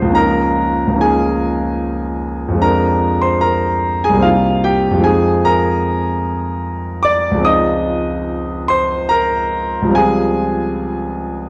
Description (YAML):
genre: classical, impressionist solo piano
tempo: 74 BPM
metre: 3/4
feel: uneven beats, rubato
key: F minor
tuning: A4 = 440 Hz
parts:
  - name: clear concert grand piano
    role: solo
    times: 0.0-11.5 s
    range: C2 to Eb6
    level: -16 LUFS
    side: equal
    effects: none
room: moderate recital hall reverb, RT60 1.7 s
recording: dark, warm production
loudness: -16 LUFS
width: mono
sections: 0.0-11.5 A section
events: none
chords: 0.2 Db69; 2.6 Fm6; 4.2 Cm7; 5.1 Fm7; 7.5 Dbmaj9; 10.0 Fmadd9/Db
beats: | 0.17 1.02 1.83 | 2.63 3.42 4.24 | 5.06 5.86 6.65 | 7.47 8.30 9.12 | 9.96 10.79